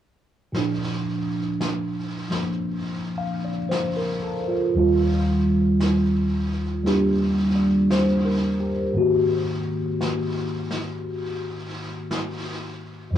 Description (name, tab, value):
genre	jazz ballad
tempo	57 BPM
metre	4/4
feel	swing 68% on 8ths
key	Bb major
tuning	A4 = 440 Hz
part	tine electric piano	accompaniment	0.5-13.2 s	Eb2 to F5	-21 LUFS	equal	phaser
part	vintage brush drum kit	drums	0.5-13.2 s	brushed snare drum, hi-hat, snare drum	-33 LUFS	equal	none
room	little or no reverb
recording	home recording on cassette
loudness	-21 LUFS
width	side -10 dB against mid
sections	0.6-13.2 A section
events	none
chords	0.6 Bb; 4.8 Eb6; 9.0 Ab7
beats	| 0.56 1.61 2.66 3.71 | 4.76 5.81 6.86 7.91 | 8.96 10.01 11.06 12.11 | 13.16